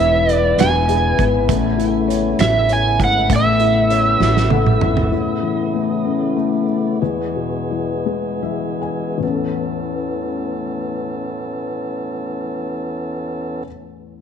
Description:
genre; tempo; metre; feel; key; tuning
six-eight pop ballad; 48-66 BPM (dotted quarters); 6/8; straight; A major; A4 = 440 Hz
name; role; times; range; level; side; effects
overdriven slide guitar; melody; 0.0-4.5 s; E5 to G#5; -18 LUFS; right 3 dB; tape echo
felt-muted upright piano; accompaniment; 0.0-14.2 s; A1 to G#5; -21 LUFS; left 9 dB; none
tonewheel organ; sustained chords; 0.0-13.6 s; G#2 to A4; -24 LUFS; right 2 dB; overdrive, stopped rotary speaker
upright bass; bass; 0.0-5.1 s; E1 to A1; -20 LUFS; right 1 dB; none
loose indie drum kit; drums; 0.3-5.1 s; hi-hat, kick drum, snare drum, toms; -21 LUFS; right 5 dB; none
room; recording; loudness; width
moderate plate reverb, RT60 1.6 s, studio reverb; 1960s-style stereo; -16 LUFS; side -8 dB against mid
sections
0.0-5.1 A section; 5.1-9.2 B section; 9.2-14.2 C section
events
drum fill 4.2-5.1; felt piano fill 4.2-5.1, 8.1-9.2; slowing down 5.1-9.2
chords
0.0 E; 1.5 Aadd9; 7.0 E; 9.2 Aadd9

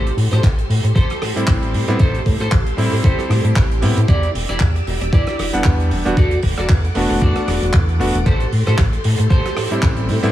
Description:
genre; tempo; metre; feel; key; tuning
nu-disco, nu disco; 115 BPM; 4/4; swing 56% on 16ths; A dorian; A4 = 439 Hz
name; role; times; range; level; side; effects
string machine, full ensemble; sustained chords; 0.0-10.3 s; G4 to E6; -28 LUFS; equal; ensemble chorus, sidechain pumping
electric guitar at the edge of break-up; riff; 0.0-9.8 s; E4 to D5; -25 LUFS; right 1 dB; lush chorus, digital delay
chorused synth bass; bass; 0.0-10.3 s; E1 to A2; -18 LUFS; equal; none
damped 70s drum kit; drums; 0.1-10.3 s; handclaps, hi-hat, rim click; -26 LUFS; right 2 dB; none
electronic kick drum; drums; 0.4-9.9 s; none; -16 LUFS; equal; overdrive
clear electric grand piano; accompaniment; 1.4-10.3 s; G3 to F#5; -22 LUFS; right 1 dB; digital delay
room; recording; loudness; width
small room reverb; small room ambience; -14 LUFS; side -13 dB against mid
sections
0.0-10.3 A section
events
none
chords
0.0 Am7; 4.1 Em7; 6.2 E9sus4; 8.3 Am7

